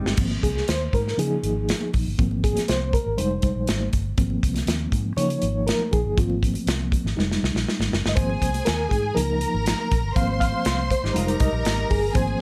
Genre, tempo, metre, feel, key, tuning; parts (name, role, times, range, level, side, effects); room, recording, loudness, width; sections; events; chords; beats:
uptempo 1960s-style soul; 120 BPM; 4/4; straight; Ab major; A4 = 441 Hz
reed electric piano; accompaniment; 0.0-12.4 s; F3 to F5; -28 LUFS; equal; fast tremolo
mellow electric guitar; riff; 0.0-0.2, 11.0-12.0 s; G3 to F4; -34 LUFS; equal; tube saturation
vintage muted fingered electric bass; bass; 0.0-12.3 s; F1 to Db3; -29 LUFS; equal
natural country drum kit; drums; 0.1-12.3 s; crash cymbal, hi-hat, kick drum, snare drum; -27 LUFS; equal
congas; percussion; 0.3-12.4 s; -39 LUFS; equal
rich studio string section; second line; 8.2-12.4 s; Ab4 to C6; -31 LUFS; equal
light reverb; -23 LUFS; mono
0.2-12.4 A section
drum fill 0.0, 7.2-8.2; reed electric piano solo 0.2-12.4
0.2 Ab6; 1.2 Db6; 2.2 Ab6; 3.2 Fm7; 4.2 Ab6; 5.2 Db6; 6.2 Ab6; 7.2 Fm7; 8.2 Ab6; 9.2 Db6; 10.2 Ab6; 11.2 Fm7
| 0.18 0.69 1.19 1.69 | 2.19 2.69 3.19 3.68 | 4.18 4.68 5.18 5.68 | 6.18 6.67 7.17 7.67 | 8.17 8.67 9.16 9.66 | 10.16 10.66 11.15 11.65 | 12.15